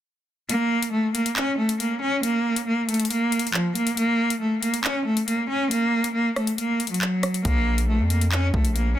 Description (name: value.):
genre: hip hop, drill.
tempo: 138 BPM.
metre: 4/4.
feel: half-time.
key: Bb harmonic minor.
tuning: A4 = 440 Hz.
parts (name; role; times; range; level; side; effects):
rich cello; melody; 0.5-9.0 s; F3 to Db4; -22 LUFS; equal; plate reverb.
drill drum kit; drums; 0.5-8.9 s; handclaps, hi-hat, kick drum, rim click; -26 LUFS; left 1 dB; none.
hard-hitting 808-style bass; bass; 7.5-9.0 s; Bb1 to F2; -22 LUFS; equal; none.
room: light reverb.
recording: dense, heavily limited modern master.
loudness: -21 LUFS.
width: side -12 dB against mid.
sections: 0.5-9.0 A section.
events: kick muted 0.5-7.5.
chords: 0.5 N.C.; 7.5 Bb5.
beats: | 0.49 0.93 1.36 1.80 | 2.23 2.67 3.10 3.54 | 3.97 4.41 4.84 5.28 | 5.71 6.15 6.58 7.02 | 7.45 7.89 8.32 8.76.